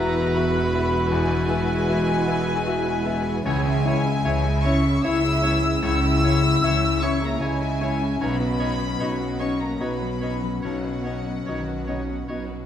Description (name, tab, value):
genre	cinematic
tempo	76 BPM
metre	3/4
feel	uneven beats, rubato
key	unclear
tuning	A4 = 440 Hz
part	warm studio violin section	melody	0.0-12.3 s	F#5 to E6	-30 LUFS	left 2 dB	none
part	bright oboe	second line	0.0-12.4 s	B4 to C#5	-34 LUFS	right 2 dB	none
part	dark studio violin section	second line	0.0-12.7 s	C#4 to E5	-35 LUFS	left 1 dB	none
part	large flute ensemble	second line	0.0-12.3 s	F#5 to E6	-33 LUFS	left 3 dB	none
part	mellow clarinet	second line	0.0-12.4 s	D#4 to F#4	-33 LUFS	equal	none
part	bright grand piano	accompaniment	0.0-12.7 s	B1 to E5	-30 LUFS	left 2 dB	none
part	dark symphonic viola section	accompaniment	0.0-12.7 s	E3 to E4	-32 LUFS	right 1 dB	none
part	warm French horn section	sustained chords	0.0-12.3 s	F#3 to E4	-28 LUFS	left 2 dB	none
part	concert harp	arpeggios	0.0-12.7 s	B2 to E6	-29 LUFS	left 6 dB	none
part	dark symphonic double bass section	bass	0.0-12.7 s	E1 to C#2	-28 LUFS	right 2 dB	none
part	warm symphonic cello section	bass	0.0-12.7 s	E2 to D#3	-30 LUFS	right 2 dB	none
room	wet recital hall reverb, RT60 1.4 s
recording	none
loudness	-20 LUFS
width	side -10 dB against mid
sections	0.0-12.7 A section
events	none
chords	0.0 Eadd9; 3.5 C#m; 8.2 Badd9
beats	0.35 | 1.11 1.88 2.66 | 3.46 4.25 5.04 | 5.83 6.63 7.41 | 8.20 8.99 9.80 | 10.63 11.46 12.29